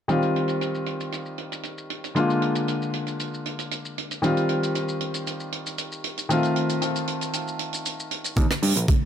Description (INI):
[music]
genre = nu-disco, nu disco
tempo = 116 BPM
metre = 4/4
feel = straight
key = Eb major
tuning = A4 = 443 Hz
[part]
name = warm baby grand piano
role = accompaniment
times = 0.1-8.3 s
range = D3 to F4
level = -25 LUFS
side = left 1 dB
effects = sidechain pumping, low-pass filter, ping-pong delay
[part]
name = tight funk drum kit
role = drums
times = 0.1-9.0 s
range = hi-hat, rim click, shaker, toms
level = -30 LUFS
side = right 2 dB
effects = low-pass filter on hats, low-pass filter on toms, low-pass filter on snare, low-pass filter on perc, low-pass filter on room
[part]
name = overdriven picked electric bass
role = bass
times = 8.4-8.8 s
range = Bb1 to G2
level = -23 LUFS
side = equal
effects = high-pass filter
[part]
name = electronic kick drum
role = drums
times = 8.4-9.0 s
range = none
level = -20 LUFS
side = right 1 dB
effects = none
[sound]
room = light reverb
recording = none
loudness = -24 LUFS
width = side -9 dB against mid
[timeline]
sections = 0.1-8.4 A section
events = drum fill 8.4-9.1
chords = 0.1 Eb69; 2.2 Bb7; 4.2 Eb69; 6.3 F7; 8.4 Eb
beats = | 0.09 0.61 1.13 1.64 | 2.16 2.68 3.20 3.71 | 4.23 4.75 5.26 5.78 | 6.30 6.82 7.33 7.85 | 8.37 8.88